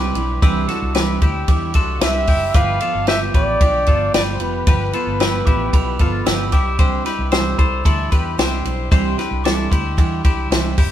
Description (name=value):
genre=jangly indie pop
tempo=113 BPM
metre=4/4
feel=straight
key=unclear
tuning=A4 = 438 Hz
part: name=glockenspiel with soft plastic mallets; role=second line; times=0.0-10.0 s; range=B5 to G6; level=-28 LUFS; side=equal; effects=none
part: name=picked steel-string acoustic guitar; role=accompaniment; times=0.0-10.9 s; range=G2 to F4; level=-25 LUFS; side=right 6 dB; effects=none
part: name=twelve-string electric guitar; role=arpeggios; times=0.0-10.9 s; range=C4 to C5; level=-25 LUFS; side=left 6 dB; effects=none
part: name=vintage muted fingered electric bass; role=bass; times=0.0-10.9 s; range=F1 to E2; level=-23 LUFS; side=equal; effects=none
part: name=compact cocktail drum kit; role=drums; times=0.2-10.9 s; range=hi-hat, kick drum, ride cymbal, snare drum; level=-17 LUFS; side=equal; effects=none
part: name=breathy trumpet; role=melody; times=2.0-6.5 s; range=B4 to F5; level=-21 LUFS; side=equal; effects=none
room=light reverb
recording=band playing live in one room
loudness=-15 LUFS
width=side -11 dB against mid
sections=0.0-10.9 A section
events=none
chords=0.0 Cadd9; 2.5 G7; 6.5 Cadd9